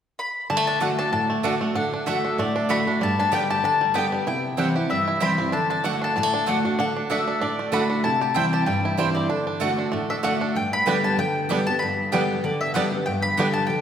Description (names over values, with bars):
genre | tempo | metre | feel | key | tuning
bluegrass | 191 BPM | 4/4 | swing 56% on 8ths | D mixolydian | A4 = 440 Hz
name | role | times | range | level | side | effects
mandolin | melody | 0.2-13.8 s | D5 to B5 | -24 LUFS | left 3 dB | none
bluegrass banjo | melody | 0.5-13.5 s | G3 to G4 | -29 LUFS | right 4 dB | none
picked steel-string acoustic guitar | accompaniment | 0.5-13.8 s | G2 to G4 | -25 LUFS | equal | none
mandolin | stabs | 0.8-13.5 s | A3 to G5 | -29 LUFS | right 4 dB | none
room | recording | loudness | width
wet concert hall reverb, RT60 2.4 s | recorded in a church or concert hall | -20 LUFS | side -8 dB against mid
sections
0.5-10.6 A section; 10.6-13.8 B section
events
none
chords
0.5 D; 3.0 G; 4.3 C; 5.5 D; 8.0 C; 9.3 D; 10.6 G